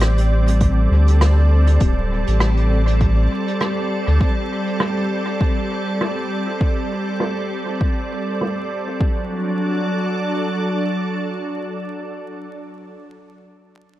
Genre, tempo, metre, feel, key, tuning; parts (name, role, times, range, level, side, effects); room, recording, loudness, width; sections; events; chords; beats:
ambient dub; 100 BPM; 4/4; swing 56% on 16ths; D mixolydian; A4 = 438 Hz
soft additive organ-like pad; sustained chords; 0.0-12.2 s; F#3 to D5; -22 LUFS; equal; ensemble chorus, built-in reverb
warm sub bass; bass; 0.0-4.2 s; D1 to D2; -14 LUFS; equal; tube saturation
jazz brush drum kit; drums; 0.0-9.0 s; hi-hat, rim click; -26 LUFS; right 1 dB; low-pass filter on hats, low-pass filter on snare, low-pass filter on perc, low-pass filter on room, dub echo
electronic kick drum; drums; 0.6-9.1 s; -19 LUFS; equal; overdrive
light reverb, studio ambience; vinyl crackle; -17 LUFS; side -14 dB against mid
0.0-9.0 A section; 9.0-11.4 B section
filter sweep on drum 0.0-9.0
0.0 D7sus4; 9.0 D
0.01 0.60 1.21 | 1.80 2.40 3.00 3.60 | 4.21 4.80 5.41 6.00 | 6.61 7.21 7.80 8.40 | 9.01 9.61 10.21 10.80